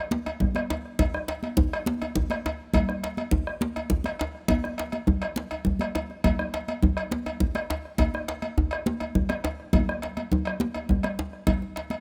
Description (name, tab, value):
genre	west african traditional, West African drum ensemble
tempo	137 BPM (dotted quarters)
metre	12/8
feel	straight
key	none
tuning	none
part	congas	percussion	0.1-12.0 s	none	-31 LUFS	equal	none
part	djembe	percussion	0.1-12.0 s	none	-32 LUFS	equal	none
part	bombo	percussion	0.3-11.6 s	none	-31 LUFS	equal	none
part	cowbell	percussion	0.3-12.0 s	none	-36 LUFS	equal	none
room	light reverb, small room ambience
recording	rough home demo mix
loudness	-27 LUFS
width	mono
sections	0.0-12.0 A section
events	none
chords	none